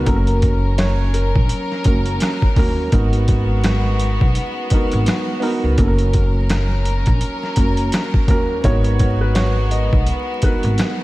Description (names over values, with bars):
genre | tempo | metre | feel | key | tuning
hip hop, boom-bap hip-hop | 84 BPM | 4/4 | swing 58% on 16ths | G# minor | A4 = 439 Hz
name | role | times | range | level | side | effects
dark baby grand piano | accompaniment | 0.0-11.0 s | A#3 to A#4 | -24 LUFS | right 2 dB | cassette tape, high-pass filter, low-pass filter
rich chamber string section | sustained chords | 0.0-11.0 s | F#3 to A#4 | -25 LUFS | left 1 dB | high-pass filter, low-pass filter
upright bass | bass | 0.0-10.8 s | F#1 to D#2 | -18 LUFS | equal | none
warm upright piano | melody | 0.1-2.4, 8.6-10.6 s | A#4 to D#5 | -27 LUFS | equal | high-pass filter, low-pass filter, ping-pong delay
boom bap sampler-style drum kit | drums | 0.1-11.0 s | hi-hat, kick drum, rim click, snare drum | -18 LUFS | equal | overdrive
room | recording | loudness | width
light reverb, small room reverb | vinyl crackle | -15 LUFS | side -18 dB against mid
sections
0.0-11.0 A section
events
none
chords
0.1 F#; 2.9 G#m7; 5.8 F#; 8.6 G#m7